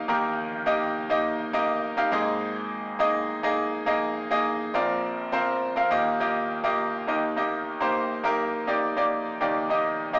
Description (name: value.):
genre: pop.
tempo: 103 BPM.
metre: 4/4.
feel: straight.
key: Eb major.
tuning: A4 = 441 Hz.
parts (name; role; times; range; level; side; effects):
bright grand piano; solo; 0.0-10.2 s; Ab1 to F5; -26 LUFS; equal; cassette tape.
room: wet studio reverb, RT60 0.5 s.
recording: home recording on cassette, small speaker sound.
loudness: -26 LUFS.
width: mono.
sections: 0.0-7.1 A section; 7.1-10.2 B section.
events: none.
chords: 0.0 Eb; 2.1 Absus2; 4.7 Bbadd9; 5.9 Ebadd9; 7.1 Eb.